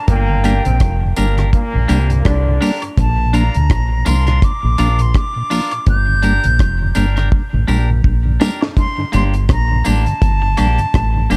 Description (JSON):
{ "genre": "roots reggae", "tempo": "83 BPM", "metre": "4/4", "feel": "swing 58% on 16ths", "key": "G minor", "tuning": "A4 = 438 Hz", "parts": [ { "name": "bright concert flute", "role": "melody", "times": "0.0-11.4 s", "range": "G5 to G6", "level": "-24 LUFS", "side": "equal", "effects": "tape echo" }, { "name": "bright trombone section", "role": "second line", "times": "0.1-2.8 s", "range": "Bb2 to D4", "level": "-26 LUFS", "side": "equal", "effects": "tape echo" }, { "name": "deep dub fingered electric bass", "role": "bass", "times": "0.1-11.4 s", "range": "F1 to D2", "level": "-18 LUFS", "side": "equal", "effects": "none" }, { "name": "deep reggae drum kit", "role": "drums", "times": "0.1-11.4 s", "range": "hi-hat, kick drum, rim click, snare drum", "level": "-19 LUFS", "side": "equal", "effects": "analog delay" }, { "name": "mellow tonewheel organ", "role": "accompaniment", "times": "0.3-11.4 s", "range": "G2 to D4", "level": "-24 LUFS", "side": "equal", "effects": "slow rotary speaker, analog delay" }, { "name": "clean electric guitar", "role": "accompaniment", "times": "0.4-11.4 s", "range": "Bb3 to Bb4", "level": "-28 LUFS", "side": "equal", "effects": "tube saturation, tape echo" }, { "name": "tambourine and woodblock", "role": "percussion", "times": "0.5-11.4 s", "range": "none", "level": "-34 LUFS", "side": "equal", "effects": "none" } ], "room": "small room reverb", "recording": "dark, warm production", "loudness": "-15 LUFS", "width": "mono", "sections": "0.0-8.8 A section; 8.8-11.4 B section", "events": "drum fill 7.3-8.8", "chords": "0.1 Gm; 3.0 Bb; 5.9 Gm" }